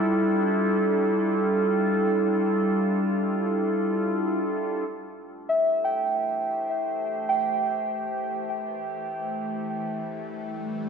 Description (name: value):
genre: ambient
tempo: free time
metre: none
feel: none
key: A minor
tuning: A4 = 436 Hz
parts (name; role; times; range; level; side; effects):
- evolving wavetable pad; sustained chords; 0.0-10.9 s; D3 to C5; -25 LUFS; equal; chorus, built-in reverb
- muted felt-like synth keys; arpeggios; 0.0-10.9 s; E5 to G5; -28 LUFS; right 1 dB; chorus, ping-pong delay
- bowed-like drone; drone; 7.5-10.9 s; E3 to A3; -36 LUFS; left 1 dB; built-in reverb, phaser
room: wet concert hall reverb, RT60 2.0 s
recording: cassette tape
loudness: -23 LUFS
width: side -6 dB against mid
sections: 0.0-4.9 A section; 4.9-10.9 B section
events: fade-in on ambient pad 4.9-10.9; fade-in on synth drone 4.9-10.9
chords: 0.0 Gsus2; 4.9 Am7; 9.7 Gsus2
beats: free time